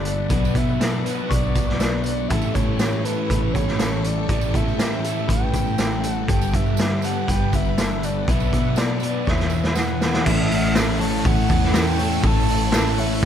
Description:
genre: rock, shoegaze and dream pop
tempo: 120 BPM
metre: 4/4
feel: straight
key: A mixolydian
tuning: A4 = 440 Hz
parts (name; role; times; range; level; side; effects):
- breathy flute-like synth lead; melody; 0.0-13.3 s; B4 to A5; -29 LUFS; right 4 dB; chorus, digital delay
- string machine, full ensemble; sustained chords; 0.0-13.3 s; D4 to E6; -35 LUFS; equal; phaser, ensemble chorus
- direct-recorded clean electric guitar; arpeggios; 0.0-13.3 s; G4 to C#6; -34 LUFS; left 10 dB; analog chorus, digital delay
- overdriven semi-hollow guitar; riff; 0.0-13.3 s; E2 to A4; -28 LUFS; right 12 dB; reverse reverb
- thick fuzz guitar; riff; 0.0-13.3 s; E2 to B3; -26 LUFS; left 12 dB; distortion, lush chorus
- vintage muted fingered electric bass; bass; 0.0-13.3 s; G1 to B2; -25 LUFS; equal; none
- raw garage drum kit; drums; 0.0-13.3 s; crash cymbal, hi-hat, kick drum, snare drum; -23 LUFS; equal; none
- tambourine; percussion; 0.1-12.9 s; none; -40 LUFS; right 16 dB; none
room: small room ambience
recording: dark, warm production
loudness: -18 LUFS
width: side -9 dB against mid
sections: 0.0-10.3 A section; 10.3-13.3 B section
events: drum fill 9.3-10.3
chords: 0.3 Bmadd9; 2.3 A7; 6.3 Gmaj7; 8.3 Bmadd9; 9.3 E7; 10.3 A

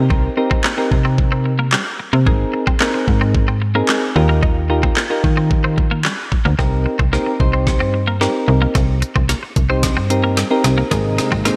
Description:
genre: dance-pop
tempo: 111 BPM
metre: 4/4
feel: straight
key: C minor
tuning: A4 = 440 Hz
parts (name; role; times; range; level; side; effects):
- twelve-string electric guitar; riff; 0.0-11.5 s; G3 to Eb4; -27 LUFS; equal; analog chorus
- slap-like FM bass; bass; 0.0-11.5 s; Ab1 to Eb3; -20 LUFS; equal; sidechain pumping
- soft electric-piano-like synth keys; accompaniment; 0.1-11.6 s; C4 to C5; -22 LUFS; equal; chorus, sidechain pumping
- smooth R&B drum kit; drums; 0.1-11.6 s; handclaps, hi-hat, kick drum, snare drum; -21 LUFS; equal; gated reverb
- soft supersaw; sustained chords; 10.9-11.6 s; C3 to Eb4; -26 LUFS; equal; subtle chorus, sidechain pumping
room: light reverb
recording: bright 1980s-style digital production, high-pass filter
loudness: -17 LUFS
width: mono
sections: 0.0-6.6 A section; 6.6-11.6 B section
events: build-up 6.6-11.6; drum fill 6.6-11.6; filter sweep 6.6-11.6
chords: 0.0 Cm7; 2.3 Abadd9; 4.2 Ebadd9; 6.6 Cm7; 10.9 Abadd9

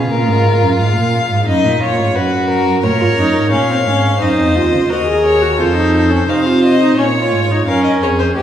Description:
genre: classical, baroque-style fugue for string quartet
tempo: 87 BPM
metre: 4/4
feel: straight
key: unclear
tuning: A4 = 440 Hz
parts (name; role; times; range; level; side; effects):
- rich violin; melody; 0.0-8.4 s; Ab4 to F5; -18 LUFS; left 4 dB; none
- warm violin; second line; 0.0-8.4 s; Eb4 to Db5; -20 LUFS; left 1 dB; none
- warm cello; bass; 0.0-8.4 s; Db2 to C3; -16 LUFS; right 2 dB; none
- warm viola; accompaniment; 3.0-8.4 s; C4 to Ab4; -15 LUFS; right 1 dB; none
room: wet recital hall reverb, RT60 1.6 s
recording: heard from further back in the room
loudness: -11 LUFS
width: side -10 dB against mid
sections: 0.0-8.4 A section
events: none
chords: 0.1 Bb5; 2.8 Bbm; 4.2 Ebm; 5.6 F7; 7.0 Bbm

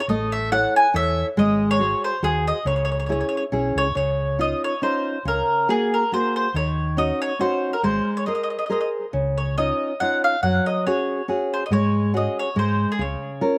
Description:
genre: italian folk, Italian serenade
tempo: 139 BPM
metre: 3/4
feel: swing 54% on 8ths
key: C# minor, Db major from 4.0 s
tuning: A4 = 438 Hz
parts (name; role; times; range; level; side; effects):
- mandolin; melody; 0.0-13.6 s; G#4 to G#5; -26 LUFS; equal; slapback echo
- nylon-string guitar; accompaniment; 0.1-13.6 s; C#3 to C#5; -25 LUFS; equal; slapback echo
- fingered electric bass; bass; 0.1-13.1 s; G#1 to Ab2; -28 LUFS; equal; none
room: little or no reverb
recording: recorded outdoors, with no room sound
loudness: -22 LUFS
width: mono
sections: 0.0-4.0 A section; 4.0-13.6 B section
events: none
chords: 0.1 A; 1.4 G#7; 2.7 C#m; 4.0 Dbadd9; 5.3 Gbadd9/Db; 6.5 Ebm7; 7.8 Abadd9; 9.1 Dbadd9; 10.4 Gbsus2; 11.7 Ab7sus4; 12.6 Ab; 13.0 Db6

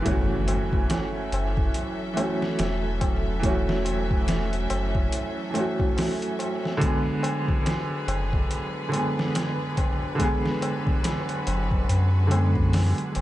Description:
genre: trip hop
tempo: 71 BPM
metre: 4/4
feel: swing 59% on 16ths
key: F# minor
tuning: A4 = 441 Hz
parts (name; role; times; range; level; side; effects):
- warm upright piano; accompaniment; 0.0-13.2 s; D3 to G#4; -27 LUFS; right 1 dB; tremolo, vintage 12-bit sampler grit, tape echo
- bright symphonic string section; sustained chords; 0.0-13.2 s; F#3 to E5; -34 LUFS; left 1 dB; none
- soft dub sub bass; bass; 0.0-13.2 s; E1 to F#2; -25 LUFS; equal; tube saturation
- trip hop sampler-style drum kit; drums; 0.1-13.2 s; hi-hat, kick drum, snare drum; -27 LUFS; equal; overdrive
- tabla; percussion; 0.1-13.2 s; none; -38 LUFS; left 2 dB; dub echo
- impact; sound effects; 0.1-3.4 s; none; -33 LUFS; equal; none
room: little or no reverb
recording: echo-heavy mix, nothing above 10.7 kHz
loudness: -22 LUFS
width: side -14 dB against mid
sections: 0.1-13.2 A section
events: impact 0.1-3.4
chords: 0.1 F#m7; 6.8 G#dim/F#

